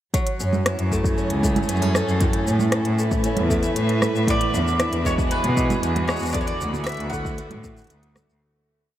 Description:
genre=folktronica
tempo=116 BPM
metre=4/4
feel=straight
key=F# minor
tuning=A4 = 441 Hz
part: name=dark string quartet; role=sustained chords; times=0.1-8.4 s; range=D3 to E5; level=-28 LUFS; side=right 1 dB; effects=none
part: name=picked old ladder-braced acoustic guitar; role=arpeggios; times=0.1-9.0 s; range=E2 to F#4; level=-27 LUFS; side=equal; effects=analog delay
part: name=electronic kick drum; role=drums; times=0.1-7.7 s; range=none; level=-25 LUFS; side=equal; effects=overdrive
part: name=organic electronic drum kit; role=drums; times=0.1-8.4 s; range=congas, hi-hat, rim click, shaker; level=-28 LUFS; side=right 2 dB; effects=overdrive
part: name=dark cello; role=bass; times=0.4-8.4 s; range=C#2 to B2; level=-24 LUFS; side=equal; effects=none
part: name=mandolin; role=melody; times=4.3-8.1 s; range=B4 to F#5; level=-27 LUFS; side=equal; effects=analog delay
room=moderate huge ambient reverb, RT60 8.8 s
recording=dreamy mix soaked in reverb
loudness=-19 LUFS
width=side -12 dB against mid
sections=0.1-8.4 groove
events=fade-out 5.7-8.4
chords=0.1 F#m7; 2.2 A; 4.3 E7; 6.4 D6

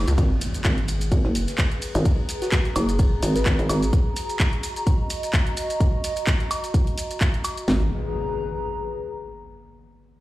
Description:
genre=bass house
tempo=128 BPM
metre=4/4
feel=swing 56% on 16ths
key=G# minor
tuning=A4 = 440 Hz
part: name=house drum kit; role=drums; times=0.1-7.7 s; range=handclaps, hi-hat, woodblock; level=-29 LUFS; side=equal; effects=none
part: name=maracas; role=percussion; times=0.1-7.7 s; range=none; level=-36 LUFS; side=right 1 dB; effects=none
part: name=hollow knocking FM bass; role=bass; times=0.2-3.9, 7.7-7.9 s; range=F#1 to G#1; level=-22 LUFS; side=equal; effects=sidechain pumping
part: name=house drum kit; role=drums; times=0.2-7.8 s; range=kick drum, snare drum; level=-21 LUFS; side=equal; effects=none
part: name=jazz brush drum kit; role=drums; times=0.2-3.8 s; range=hi-hat, ride cymbal, snare drum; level=-40 LUFS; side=left 1 dB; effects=sidechain pumping on cymbals, high-pass filter on cymbals, sidechain pumping on hats, high-pass filter on hats, high-pass filter on snare, high-pass filter on room
part: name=impact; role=sound effects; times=0.2-2.1, 7.7-9.6 s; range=none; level=-32 LUFS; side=equal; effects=none
part: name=warbly tape-like pad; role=texture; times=0.9-9.5 s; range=F#4 to A#5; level=-31 LUFS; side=left 1 dB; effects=chorus, built-in reverb, sidechain pumping
part: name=bell-like FM electric piano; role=melody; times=2.4-3.8 s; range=F#4 to B4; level=-32 LUFS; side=left 2 dB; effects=chorus, tremolo, digital delay
room=digital ambience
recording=played on a big sound system in a bare room, stone room reverb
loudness=-20 LUFS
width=side -16 dB against mid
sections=0.2-7.7 A section; 7.7-9.6 B section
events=impact 0.2-2.1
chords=0.2 G#madd9; 3.9 D#m; 7.7 G#madd9

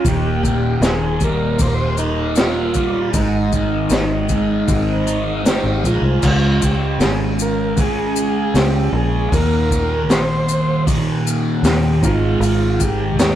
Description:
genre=psychedelic rock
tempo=78 BPM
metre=4/4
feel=straight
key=Eb mixolydian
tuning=A4 = 441 Hz
part: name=overdriven combo organ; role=melody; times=0.0-13.4 s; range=Eb4 to C5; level=-22 LUFS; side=right 1 dB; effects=none
part: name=fuzz guitar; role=riff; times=0.0-13.4 s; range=Eb2 to Eb4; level=-20 LUFS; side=equal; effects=distortion, phaser
part: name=fingered electric bass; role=bass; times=0.0-13.4 s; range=Eb1 to Eb2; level=-20 LUFS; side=equal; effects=none
part: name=crunchy breakbeat drum kit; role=drums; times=0.0-13.4 s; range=crash cymbal, hi-hat, kick drum, snare drum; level=-20 LUFS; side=equal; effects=none
part: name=maracas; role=percussion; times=0.1-13.4 s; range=none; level=-31 LUFS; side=left 6 dB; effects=none
room=light reverb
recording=rough rehearsal-room recording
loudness=-15 LUFS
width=side -11 dB against mid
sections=0.0-6.2 A section; 6.2-13.4 B section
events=none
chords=0.1 Eb; 3.1 Ab; 6.2 Db5; 9.3 Eb5; 12.0 Ab5

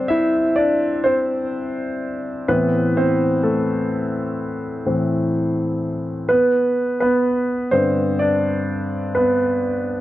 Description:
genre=pop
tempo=63 BPM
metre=4/4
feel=straight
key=G major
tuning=A4 = 440 Hz
part: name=warm grand piano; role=solo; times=0.0-10.0 s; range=G2 to E5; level=-18 LUFS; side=equal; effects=none
room=moderate plate reverb, RT60 2.7 s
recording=worn, warbling old tape, cassette tape, warbly pitch drift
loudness=-18 LUFS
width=side -15 dB against mid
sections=0.0-10.0 A section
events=grand piano solo 0.0-10.0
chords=0.0 D7sus4; 2.5 Am; 6.3 G

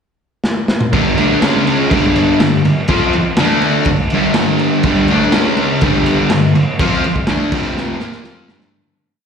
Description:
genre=garage rock duo or trio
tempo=123 BPM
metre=4/4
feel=straight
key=unclear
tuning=A4 = 440 Hz
part: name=crunchy breakbeat drum kit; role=drums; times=0.4-8.7 s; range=crash cymbal, kick drum, snare drum, toms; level=-17 LUFS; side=equal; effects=none
part: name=fuzz guitar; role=riff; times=0.9-8.7 s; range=F2 to F4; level=-13 LUFS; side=equal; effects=distortion, slapback echo
room=studio reverb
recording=live gig heard through the venue's PA, recital hall reverb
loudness=-12 LUFS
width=side -6 dB against mid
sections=0.0-0.9 pickup bar; 0.9-8.7 riff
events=drum fill 0.4-0.9, 7.8-8.7; fade-out 6.8-8.7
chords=0.0 N.C.; 0.9 G5; 1.4 C#5; 1.9 G5; 3.4 D5; 3.9 G5; 5.3 C#5; 5.8 G5; 7.5 F5; 8.0 G5

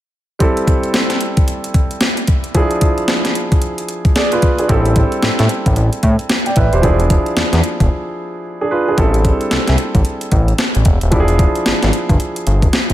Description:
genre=R&B, new jack swing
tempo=112 BPM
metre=4/4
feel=swing 61% on 16ths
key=A minor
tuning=A4 = 441 Hz
part: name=clear grand piano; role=accompaniment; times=0.4-12.9 s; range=F3 to G5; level=-18 LUFS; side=right 1 dB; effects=none
part: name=crisp 8-bit digital drum machine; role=drums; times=0.4-12.9 s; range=hi-hat, kick drum, snare drum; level=-15 LUFS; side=equal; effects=overdrive
part: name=fat analog bass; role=bass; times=4.7-12.9 s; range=D#1 to A2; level=-14 LUFS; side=equal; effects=none
room=digital ambience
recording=none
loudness=-12 LUFS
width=side -13 dB against mid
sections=0.4-9.0 A section; 9.0-12.9 B section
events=break 7.9-9.0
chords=0.4 Am7; 2.6 E7b9; 4.7 Am7; 6.8 E7b9; 9.0 Am7; 11.1 E7b9

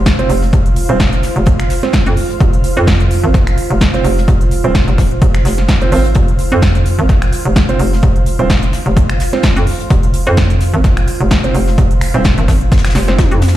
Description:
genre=bass house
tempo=128 BPM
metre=4/4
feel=swing 55% on 16ths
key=F minor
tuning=A4 = 440 Hz
part: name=hollow knocking FM bass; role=bass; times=0.0-13.6 s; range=Eb1 to F2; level=-14 LUFS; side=equal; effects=tube saturation, sidechain pumping
part: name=granular cloud pad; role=texture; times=0.0-13.6 s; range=F4 to F5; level=-22 LUFS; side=right 2 dB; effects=built-in reverb, sidechain pumping
part: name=big-room dance drum kit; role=drums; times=0.1-13.5 s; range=finger snaps, hi-hat, snare drum, toms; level=-20 LUFS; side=equal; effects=overdrive
part: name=electronic kick drum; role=drums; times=0.1-13.3 s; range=none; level=-13 LUFS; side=equal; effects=overdrive
part: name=soft brush drum kit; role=drums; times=0.1-13.6 s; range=hi-hat, snare drum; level=-30 LUFS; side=left 2 dB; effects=sidechain pumping on hats, high-pass filter on hats, high-pass filter on snare, high-pass filter on room
part: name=warm grand piano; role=stabs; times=0.2-13.1 s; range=C4 to C5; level=-21 LUFS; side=right 6 dB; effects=sidechain pumping, dub echo
room=studio ambience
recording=played on a big sound system in a bare room, large studio reverb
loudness=-10 LUFS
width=side -14 dB against mid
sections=0.0-13.6 A section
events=drum fill 13.0-13.6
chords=0.0 F5

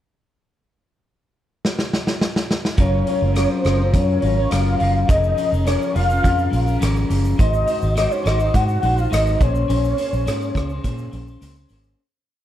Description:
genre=indie pop, bedroom pop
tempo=104 BPM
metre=4/4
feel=straight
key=unclear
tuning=A4 = 443 Hz
part: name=raw garage drum kit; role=drums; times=1.6-12.0 s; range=hi-hat, kick drum, rim click, shaker, snare drum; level=-23 LUFS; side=equal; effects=none
part: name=warbly nostalgic lead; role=melody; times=2.8-11.4 s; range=C5 to Gb5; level=-22 LUFS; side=left 1 dB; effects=ensemble chorus, slapback echo
part: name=electric guitar through a small old amp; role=accompaniment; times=2.8-12.0 s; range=F3 to C5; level=-24 LUFS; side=left 3 dB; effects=wide subtle chorus, warbly pitch drift
part: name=vintage muted fingered electric bass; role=bass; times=2.8-11.9 s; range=F1 to Bb2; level=-20 LUFS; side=right 1 dB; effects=none
room=small room reverb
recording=none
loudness=-17 LUFS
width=side -12 dB against mid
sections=0.5-2.8 pickup bar; 2.8-12.0 verse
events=drum fill 1.6-2.8; fade-out 9.7-12.0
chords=0.5 N.C.; 2.8 Gbmaj7; 5.1 Db6/F; 7.4 Ab7; 9.4 Bbm9

